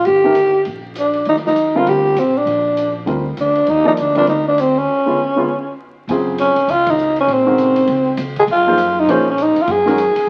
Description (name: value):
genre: modal jazz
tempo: 199 BPM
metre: 4/4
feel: swing 61% on 8ths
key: Gb lydian from 6.1 s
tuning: A4 = 440 Hz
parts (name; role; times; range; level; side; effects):
- growling tenor saxophone; melody; 0.0-10.3 s; C4 to Ab4; -16 LUFS; equal; none
- upright bass; bass; 0.0-10.3 s; G1 to Db3; -31 LUFS; equal; none
- open jazz drum kit; drums; 0.0-10.2 s; hi-hat, kick drum, ride cymbal, snare drum; -34 LUFS; equal; none
- dark baby grand piano; accompaniment; 0.2-10.0 s; Db3 to D5; -22 LUFS; equal; none
room: moderate large studio reverb, RT60 1.2 s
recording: very old 78 rpm record, vinyl crackle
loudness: -16 LUFS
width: mono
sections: 0.0-6.1 A section; 6.1-10.3 B section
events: break 4.9-6.1; band accent 6.8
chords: 0.0 Eb (rootless); 1.3 Gm; 4.9 Db7b9; 6.1 Gbmaj9#11; 8.5 Ebm/Gb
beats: | 0.06 0.36 0.66 0.96 | 1.26 1.56 1.87 2.17 | 2.47 2.77 3.07 3.38 | 3.68 3.98 4.28 4.58 | 4.88 5.18 5.49 5.79 | 6.09 6.39 6.69 6.99 | 7.29 7.59 7.89 8.19 | 8.49 8.79 9.09 9.39 | 9.69 9.99 10.29